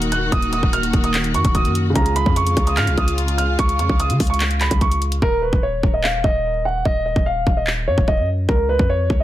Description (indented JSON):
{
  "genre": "hip hop, trap",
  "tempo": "147 BPM",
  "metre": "4/4",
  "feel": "half-time",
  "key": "unclear",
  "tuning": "A4 = 441 Hz",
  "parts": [
    { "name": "dark grand piano", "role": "melody", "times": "0.0-9.2 s", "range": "Bb4 to Gb6", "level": "-21 LUFS", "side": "right 1 dB", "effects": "low-pass filter, tape echo" },
    { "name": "warm baby grand piano", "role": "accompaniment", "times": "0.0-5.2 s", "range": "Db3 to Bb4", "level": "-30 LUFS", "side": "right 1 dB", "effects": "none" },
    { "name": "dark studio string section", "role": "sustained chords", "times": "0.0-5.2 s", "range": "Db3 to Gb4", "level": "-25 LUFS", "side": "left 2 dB", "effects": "none" },
    { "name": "hard-hitting 808-style bass", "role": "bass", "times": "0.0-9.2 s", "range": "Eb1 to Db3", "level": "-21 LUFS", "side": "equal", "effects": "none" },
    { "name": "trap drum kit", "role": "drums", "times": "0.0-9.2 s", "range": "handclaps, hi-hat, kick drum", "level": "-20 LUFS", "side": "equal", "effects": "none" }
  ],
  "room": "light reverb, small room ambience",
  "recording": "dense, heavily limited modern master, vinyl crackle",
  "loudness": "-16 LUFS",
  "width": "side -13 dB against mid",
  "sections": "0.0-5.2 A section; 5.2-9.2 B section",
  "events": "hi-hats muted 5.2-9.2",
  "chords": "0.0 Ebm; 2.0 Db; 5.2 N.C.; 8.5 Db",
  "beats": "| 0.32 0.73 1.14 1.55 | 1.96 2.36 2.77 3.18 | 3.59 4.00 4.41 4.81 | 5.22 5.63 6.04 6.45 | 6.85 7.26 7.67 8.08 | 8.49 8.89"
}